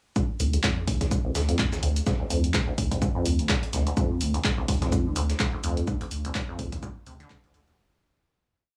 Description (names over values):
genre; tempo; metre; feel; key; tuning
acid house; 126 BPM; 4/4; swing 57% on 16ths; D minor; A4 = 440 Hz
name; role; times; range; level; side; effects
acid bass, saw; riff; 0.2-7.8 s; C2 to D3; -32 LUFS; equal; lush chorus, sidechain pumping, dub echo
dusty soul sampler-style drum kit; drums; 0.2-7.7 s; hi-hat, shaker, snare drum; -40 LUFS; equal; high-pass filter on perc, high-pass filter on snare, high-pass filter on hats, high-pass filter on room
electronic kick drum; drums; 0.2-7.4 s; none; -30 LUFS; equal; none
punchy analog drum machine; drums; 0.2-7.8 s; handclaps, hi-hat; -34 LUFS; equal; none
saturated sub bass; bass; 0.4-7.7 s; D2; -29 LUFS; equal; tube saturation, sidechain pumping
room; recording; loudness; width
light reverb; small room ambience; -26 LUFS; mono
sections
0.2-7.8 groove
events
filter sweep on acid bass 0.2-7.8; fade-out 5.2-7.8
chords
0.2 Dm